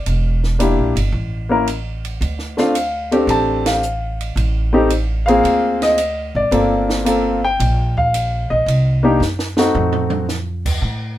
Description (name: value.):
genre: jazz piano trio.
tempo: 112 BPM.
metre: 4/4.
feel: swing 69% on 8ths.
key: unclear.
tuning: A4 = 441 Hz.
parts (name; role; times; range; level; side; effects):
warm grand piano; melody; 0.0-10.3 s; A3 to A5; -16 LUFS; left 1 dB; none.
upright bass; bass; 0.0-11.2 s; E1 to A2; -20 LUFS; right 1 dB; none.
compact cocktail drum kit; drums; 0.1-10.7 s; crash cymbal, hi-hat, kick drum, ride cymbal, snare drum, toms; -26 LUFS; right 4 dB; none.
room: moderate studio ambience, RT60 0.5 s.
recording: band playing live in one room.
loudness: -15 LUFS.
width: side -13 dB against mid.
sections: 0.0-10.8 A section.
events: band accent 3.6; drum fill 9.2-10.3.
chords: 0.1 Em7b5; 1.1 N.C.; 2.2 Dm7; 4.4 Am; 5.4 Bb9; 6.5 Gm11; 8.7 Cm; 9.7 F7b9.